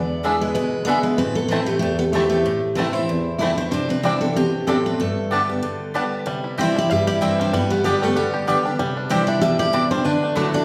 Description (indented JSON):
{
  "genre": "bluegrass",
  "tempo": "190 BPM",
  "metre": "4/4",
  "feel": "swing 56% on 8ths",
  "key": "unclear",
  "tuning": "A4 = 443 Hz",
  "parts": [
    { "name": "picked steel-string acoustic guitar", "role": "melody", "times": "0.0-10.6 s", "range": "G4 to E5", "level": "-26 LUFS", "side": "equal", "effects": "none" },
    { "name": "lap resonator guitar", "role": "second line", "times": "0.0-10.6 s", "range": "G3 to G4", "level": "-28 LUFS", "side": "equal", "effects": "none" },
    { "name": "picked steel-string acoustic guitar", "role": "accompaniment", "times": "0.0-10.6 s", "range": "E2 to G4", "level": "-25 LUFS", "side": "equal", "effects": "none" },
    { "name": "mandolin", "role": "stabs", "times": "0.2-10.5 s", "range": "A3 to B5", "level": "-29 LUFS", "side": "equal", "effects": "none" },
    { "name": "bluegrass banjo", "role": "melody", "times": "0.3-10.6 s", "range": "G3 to G4", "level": "-30 LUFS", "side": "equal", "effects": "none" }
  ],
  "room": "wet recital hall reverb, RT60 1.4 s",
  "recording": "recorded in a church or concert hall",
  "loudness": "-21 LUFS",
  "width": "mono",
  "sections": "0.0-6.3 A section; 6.3-10.6 B section",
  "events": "none",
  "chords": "0.0 E7; 1.2 Am; 3.7 Cadd9; 5.0 Gadd9; 6.3 C; 7.5 G; 8.8 Cadd9; 10.0 Dadd9",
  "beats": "0.24 0.56 0.88 | 1.19 1.51 1.83 2.15 | 2.46 2.78 3.10 3.42 | 3.73 4.05 4.37 4.68 | 5.00 5.32 5.63 5.95 | 6.26 6.58 6.90 7.21 | 7.53 7.84 8.16 8.47 | 8.79 9.10 9.42 9.73 | 10.05 10.36"
}